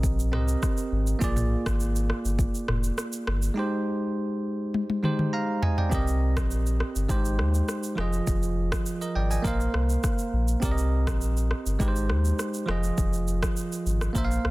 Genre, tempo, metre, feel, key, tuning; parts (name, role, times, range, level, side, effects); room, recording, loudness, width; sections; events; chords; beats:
afrobeats; 102 BPM; 4/4; straight; A4 = 440 Hz
bell-like tine electric piano; accompaniment; 0.0-14.5 s; F3 to Bb5; -29 LUFS; right 2 dB
warm sub bass; bass; 0.0-14.5 s; F1 to Eb2; -26 LUFS; equal
afro-pop drum kit; drums; 0.0-14.5 s; kick drum, rim click, shaker, toms; -29 LUFS; equal
little or no reverb; dense, heavily limited modern master; -24 LUFS; side -19 dB against mid
0.0-5.9 A section; 5.9-14.5 B section
drums muted 3.6-5.9; drum fill 4.7-5.9
0.0 Abmaj7; 1.2 Bb7; 3.6 Abmaj7; 5.9 Cm7; 7.1 Abmaj7; 8.0 Fm7; 9.4 Bbsus2; 10.6 Cm7; 11.8 Abmaj7; 12.7 Fm7
0.04 0.62 | 1.21 1.80 2.39 2.98 | 3.57 4.16 4.74 5.33 | 5.92 6.51 7.10 7.68 | 8.27 8.86 9.45 10.04 | 10.62 11.21 11.80 12.39 | 12.98 13.57 14.15